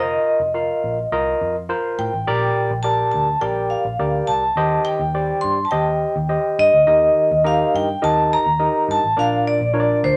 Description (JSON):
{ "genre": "uptempo 1960s-style soul", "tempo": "104 BPM", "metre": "4/4", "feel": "straight", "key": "unclear", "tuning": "A4 = 440 Hz", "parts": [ { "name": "vibraphone with medium hard mallets", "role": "melody", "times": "0.0-10.2 s", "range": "C5 to C6", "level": "-21 LUFS", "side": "equal", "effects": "none" }, { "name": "barky tine electric piano", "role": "accompaniment", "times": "0.0-10.2 s", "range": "Bb2 to F5", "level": "-23 LUFS", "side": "equal", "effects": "none" }, { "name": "vintage muted picked electric bass", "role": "bass", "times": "0.0-10.2 s", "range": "F1 to A2", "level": "-29 LUFS", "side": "equal", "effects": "none" } ], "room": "moderate small room ambience, RT60 0.5 s", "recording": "none", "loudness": "-19 LUFS", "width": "mono", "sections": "0.0-6.9 A section; 6.9-10.2 B section", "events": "none", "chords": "0.0 F7sus4; 2.3 Bb6; 4.6 Eb6; 6.9 Eb; 9.2 Bb" }